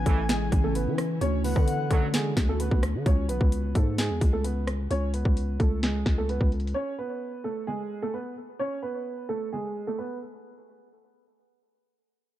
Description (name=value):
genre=hip hop, trap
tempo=130 BPM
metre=4/4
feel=half-time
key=C# phrygian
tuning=A4 = 439 Hz
part: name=dark baby grand piano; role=melody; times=0.0-10.2 s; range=G#3 to C#5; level=-31 LUFS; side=right 3 dB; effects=low-pass filter, ping-pong delay
part: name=breathy flute-like synth lead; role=second line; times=0.0-2.1 s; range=F#5 to G#5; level=-36 LUFS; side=left 7 dB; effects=chorus, tremolo, ping-pong delay
part: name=ethereal airy pad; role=sustained chords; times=0.0-3.0 s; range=C#3 to F#4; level=-35 LUFS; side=left 1 dB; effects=ensemble chorus, built-in reverb, tremolo
part: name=growling 808-style bass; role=bass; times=0.0-6.7 s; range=A1 to E3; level=-28 LUFS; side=equal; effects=none
part: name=clear brass ensemble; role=stabs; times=0.1-2.1 s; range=C#2 to F#3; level=-38 LUFS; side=right 6 dB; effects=none
part: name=trap drum kit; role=drums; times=0.1-6.7 s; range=finger snaps, hi-hat, kick drum, rim click, snare drum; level=-25 LUFS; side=equal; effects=overdrive
room=digital ambience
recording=dark, warm production, low-pass filter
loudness=-24 LUFS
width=side -13 dB against mid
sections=0.0-3.1 A section; 3.1-10.4 B section; 10.4-12.4 C section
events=filter sweep 3.1-10.4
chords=0.0 A; 1.2 D6; 3.1 C#7(no3); 6.8 G#m; 10.4 N.C.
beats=0.29 0.75 | 1.21 1.68 2.14 2.60 | 3.06 3.52 3.98 4.44 | 4.91 5.37 5.83 6.29 | 6.75 7.21 7.67 8.14 | 8.60 9.06 9.52 9.98